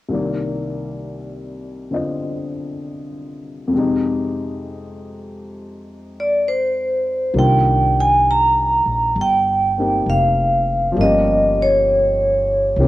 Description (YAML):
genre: jazz ballad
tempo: 66 BPM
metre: 4/4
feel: swing 67% on 8ths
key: C minor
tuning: A4 = 436 Hz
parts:
  - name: warm upright piano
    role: accompaniment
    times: 0.1-12.9 s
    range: C2 to Eb5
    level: -23 LUFS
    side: left 2 dB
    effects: cassette tape
  - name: vibraphone with medium hard mallets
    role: melody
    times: 6.2-12.9 s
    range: C5 to Bb5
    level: -16 LUFS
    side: right 1 dB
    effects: none
  - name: upright bass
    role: bass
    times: 7.3-12.9 s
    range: F1 to C2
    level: -21 LUFS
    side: equal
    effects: none
room: light reverb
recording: home recording on cassette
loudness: -15 LUFS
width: side -16 dB against mid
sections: 0.1-7.3 A section; 7.3-12.9 B section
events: none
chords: 0.1 Cm9; 3.7 Fm9; 7.3 Cm11; 11.0 Gm7b5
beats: | 0.10 1.01 1.92 2.81 | 3.71 4.61 5.52 6.43 | 7.34 8.25 9.16 10.06 | 10.97 11.87 12.78